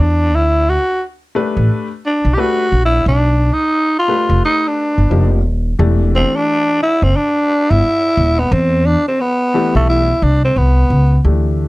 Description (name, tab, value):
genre	hip hop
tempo	88 BPM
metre	4/4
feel	swing 62% on 16ths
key	unclear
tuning	A4 = 442 Hz
part	growling tenor saxophone	melody	0.0-11.2 s	A3 to G4	-14 LUFS	equal	none
part	upright bass	bass	0.0-11.7 s	D#1 to E2	-13 LUFS	equal	none
part	warm upright piano	accompaniment	1.4-11.7 s	E3 to B4	-20 LUFS	left 4 dB	none
room	light reverb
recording	none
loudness	-12 LUFS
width	side -20 dB against mid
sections	0.0-11.2 A section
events	tenor saxophone solo 0.0-11.2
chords	0.3 Dsus4; 3.1 F13; 5.1 D#add9; 5.8 Em7; 8.5 Am9